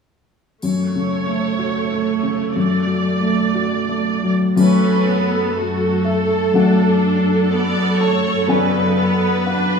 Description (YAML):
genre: cinematic, emotional film score for orchestra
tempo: 61 BPM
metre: 4/4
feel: rubato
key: F# minor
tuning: A4 = 441 Hz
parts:
  - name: clear symphonic viola section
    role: accompaniment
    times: 0.6-9.8 s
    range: C#3 to D5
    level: -21 LUFS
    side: right 4 dB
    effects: none
  - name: felt-muted upright piano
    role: accompaniment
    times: 0.6-9.8 s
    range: F#2 to A5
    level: -18 LUFS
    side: left 2 dB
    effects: none
  - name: triangle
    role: percussion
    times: 0.6-6.5 s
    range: none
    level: -41 LUFS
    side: left 3 dB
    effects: none
  - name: clear symphonic violin section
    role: second line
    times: 4.6-9.8 s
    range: A4 to D5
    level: -22 LUFS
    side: left 2 dB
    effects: none
  - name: rich chamber cello section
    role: bass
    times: 4.6-9.8 s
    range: F#2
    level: -22 LUFS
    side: right 1 dB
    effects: none
room: wet recital hall reverb, RT60 1.4 s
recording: recorded in a church or concert hall, studio ambience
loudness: -15 LUFS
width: side -5 dB against mid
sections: 0.6-4.6 A section; 4.6-9.8 B section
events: none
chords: 0.6 F#m; 2.6 D/F#; 4.6 F#m; 6.5 D/F#; 8.5 Bm/F#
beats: | 0.63 1.60 2.56 3.55 | 4.57 5.56 6.54 7.51 | 8.49 9.46